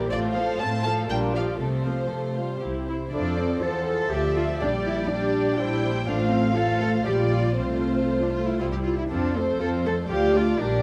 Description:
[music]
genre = quick classical-period movement for string orchestra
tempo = 121 BPM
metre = 3/4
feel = straight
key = F major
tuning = A4 = 440 Hz
[part]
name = warm chamber violin section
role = second line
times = 0.0-10.8 s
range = E4 to G5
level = -33 LUFS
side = equal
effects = none
[part]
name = warm chamber viola section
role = accompaniment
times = 0.0-10.8 s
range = E3 to A4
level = -30 LUFS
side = equal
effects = none
[part]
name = clear chamber double bass section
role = bass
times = 0.0-10.8 s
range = A1 to F2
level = -31 LUFS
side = equal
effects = none
[part]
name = warm chamber cello section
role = bass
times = 0.0-10.8 s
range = A2 to A4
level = -30 LUFS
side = equal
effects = none
[part]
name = warm chamber violin section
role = melody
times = 0.1-10.8 s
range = A4 to A5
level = -35 LUFS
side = equal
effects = none
[sound]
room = moderate scoring stage reverb, RT60 1.6 s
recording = dark, warm production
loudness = -25 LUFS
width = mono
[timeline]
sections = 0.0-3.1 A section; 3.1-10.8 A section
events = none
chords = 0.1 F/A; 1.1 Gm7/Bb; 1.6 F/C; 2.6 C; 3.1 F; 4.1 Dm; 4.6 Gm/Bb; 6.1 F/A; 7.1 Gm7/Bb; 7.6 F/C; 8.6 C; 9.1 F; 10.1 Dm

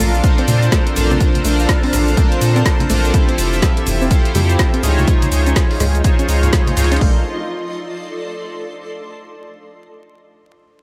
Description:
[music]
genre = deep house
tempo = 124 BPM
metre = 4/4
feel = swing 60% on 16ths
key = unclear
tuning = A4 = 440 Hz
[part]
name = soft string machine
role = sustained chords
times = 0.0-7.2 s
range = C4 to A5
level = -30 LUFS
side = equal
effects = none
[part]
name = soft round pluck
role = arpeggios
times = 0.0-7.2 s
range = G3 to Db4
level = -28 LUFS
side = equal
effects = chorus, sidechain pumping, tape echo
[part]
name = chorused polysynth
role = stabs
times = 0.0-7.2 s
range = D4 to F5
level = -23 LUFS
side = equal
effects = sidechain pumping, tape echo
[part]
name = round analog bass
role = bass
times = 0.0-7.2 s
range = F1 to Bb2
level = -18 LUFS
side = equal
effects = sidechain pumping
[part]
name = breakbeat sampler-style drum kit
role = drums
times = 0.0-7.0 s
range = hi-hat, snare drum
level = -35 LUFS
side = equal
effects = none
[part]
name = deep house drum kit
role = drums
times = 0.0-7.0 s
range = hi-hat, shaker, snare drum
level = -26 LUFS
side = equal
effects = none
[part]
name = granular cloud pad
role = texture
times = 0.0-8.9 s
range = D4 to C6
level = -29 LUFS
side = equal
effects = built-in reverb, sidechain pumping
[part]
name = punchy analog drum machine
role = drums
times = 0.2-7.1 s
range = hi-hat, kick drum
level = -17 LUFS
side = equal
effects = none
[part]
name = congas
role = percussion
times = 0.5-6.9 s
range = none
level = -27 LUFS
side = equal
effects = none
[sound]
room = light reverb, digital ambience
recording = vinyl crackle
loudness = -15 LUFS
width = mono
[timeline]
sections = 0.0-7.0 A section; 7.0-8.9 B section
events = drop 0.0-7.0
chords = 0.0 Bbmaj9; 3.1 Fmaj9; 4.8 Dbmaj9; 7.0 Bbmaj9

